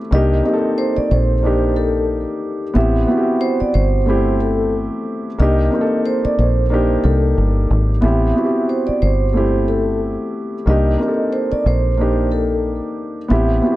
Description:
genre	hip hop, boom-bap hip-hop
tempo	91 BPM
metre	4/4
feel	swing 58% on 16ths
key	unclear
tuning	A4 = 444 Hz
part	dark grand piano	accompaniment	0.0-13.8 s	A3 to A4	-18 LUFS	left 1 dB	cassette tape
part	vibraphone with soft mallets	melody	0.1-13.8 s	A4 to E5	-22 LUFS	right 2 dB	analog delay
part	deep dub fingered electric bass	bass	0.1-13.6 s	G1 to C2	-17 LUFS	equal	none
room	little or no reverb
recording	dry, gritty hardware recording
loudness	-15 LUFS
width	side -16 dB against mid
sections	0.0-8.0 A section; 8.0-13.8 B section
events	none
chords	0.1 Cm7; 2.8 Am7; 5.4 Cm7; 8.0 Am7; 10.7 Cm7

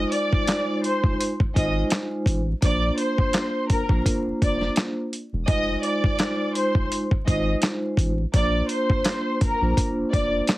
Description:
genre	hip hop, boom-bap hip-hop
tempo	84 BPM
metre	4/4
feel	swing 56% on 16ths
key	F dorian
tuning	A4 = 438 Hz
part	warm studio violin section	melody	0.0-10.3 s	Bb4 to Eb6	-26 LUFS	equal	high-pass filter, low-pass filter, slapback echo
part	vibraphone with soft mallets	accompaniment	0.0-10.6 s	Ab3 to C5	-26 LUFS	equal	high-pass filter, low-pass filter
part	soft dub sub bass	bass	0.0-10.4 s	E1 to Bb1	-26 LUFS	equal	none
part	dusty soul sampler-style drum kit	drums	0.1-10.6 s	handclaps, hi-hat, kick drum, snare drum	-23 LUFS	equal	none
room	little or no reverb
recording	heavily compressed radio sound, multiband compression, vinyl crackle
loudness	-20 LUFS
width	side -17 dB against mid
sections	0.0-10.6 A section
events	none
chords	0.0 Fm7; 2.6 Bbadd9; 5.5 Fm7; 8.3 Bbadd9

